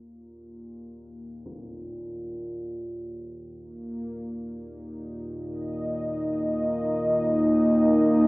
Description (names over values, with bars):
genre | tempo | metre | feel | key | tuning
dark ambient drone | 58 BPM | 4/4 | straight | unclear | A4 = 439 Hz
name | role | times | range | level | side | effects
deep rumbling drone | drone | 0.0-8.3 s | Eb2 to Bb2 | -36 LUFS | equal | built-in reverb, lush chorus
concert bass drum | percussion | 1.5-1.7 s | none | -48 LUFS | left 1 dB | low-pass filter on kick
dark analog pad | sustained chords | 3.6-8.3 s | Bb3 to Eb5 | -23 LUFS | equal | chorus
room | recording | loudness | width
moderate plate reverb, RT60 3.1 s | AM radio sound | -24 LUFS | side -24 dB against mid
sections
0.0-8.3 A section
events
fade-in on synth drone 0.0-8.3; fade-in on drum 0.0-8.3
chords
0.0 Eb5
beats
0.42 1.46 2.49 | 3.52 4.56 5.59 6.63 | 7.66